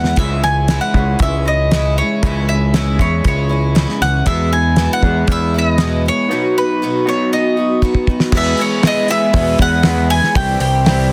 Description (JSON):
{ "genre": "folk rock and heartland rock", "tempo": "118 BPM", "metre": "4/4", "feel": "straight", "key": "E major", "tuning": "A4 = 440 Hz", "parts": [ { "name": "bowl-back mandolin", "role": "melody", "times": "0.0-11.1 s", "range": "B4 to G#5", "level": "-21 LUFS", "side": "equal", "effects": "none" }, { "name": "picked twelve-string acoustic guitar", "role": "accompaniment", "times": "0.0-11.1 s", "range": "E2 to G#4", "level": "-25 LUFS", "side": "equal", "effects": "none" }, { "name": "electric guitar through a small old amp", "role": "riff", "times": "0.0-11.1 s", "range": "E2 to G#4", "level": "-23 LUFS", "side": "equal", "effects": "none" }, { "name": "picked electric bass", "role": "bass", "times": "0.0-11.1 s", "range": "C2 to E2", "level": "-19 LUFS", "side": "equal", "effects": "none" }, { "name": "damped 70s drum kit", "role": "drums", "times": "0.0-11.0 s", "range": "crash cymbal, hi-hat, kick drum, snare drum", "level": "-19 LUFS", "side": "equal", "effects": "none" }, { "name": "bright studio string section", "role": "sustained chords", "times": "8.4-11.1 s", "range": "E4 to C5", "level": "-33 LUFS", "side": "equal", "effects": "none" } ], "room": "light reverb, small room ambience", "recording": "dense, heavily limited modern master", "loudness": "-15 LUFS", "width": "mono", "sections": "0.0-8.3 A section; 8.3-11.1 B section", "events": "drum fill 0.0, 7.8-8.3", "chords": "0.2 C#m; 4.3 E; 6.3 B; 8.3 E; 10.4 C" }